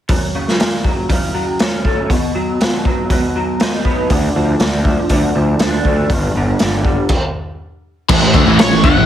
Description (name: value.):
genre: quiet-loud alternative rock.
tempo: 120 BPM.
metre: 4/4.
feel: straight.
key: unclear.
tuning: A4 = 440 Hz.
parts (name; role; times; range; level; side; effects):
electric guitar through a small old amp; arpeggios; 0.1-7.1 s; F#2 to D#4; -19 LUFS; right 1 dB; ensemble chorus.
raw garage drum kit; drums; 0.1-9.0 s; crash cymbal, hi-hat, kick drum, snare drum; -16 LUFS; equal; none.
fuzz picked electric bass; bass; 4.1-9.1 s; G1 to D2; -16 LUFS; equal; overdrive.
overdriven electric guitar; riff; 8.1-9.1 s; G2 to A3; -16 LUFS; left 12 dB; phaser.
thick fuzz guitar; riff; 8.1-9.1 s; G2 to A3; -15 LUFS; right 13 dB; distortion.
octave-fuzz lead guitar; melody; 8.6-9.1 s; C#5 to F#5; -15 LUFS; left 1 dB; distortion, slapback echo.
room: studio reverb.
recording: heavily compressed radio sound, multiband compression.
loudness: -13 LUFS.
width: side -10 dB against mid.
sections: 0.1-8.1 A section.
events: stop 7.1-8.1.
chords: 0.1 F#m; 2.1 B; 4.1 Dm; 6.1 G5; 8.1 A5.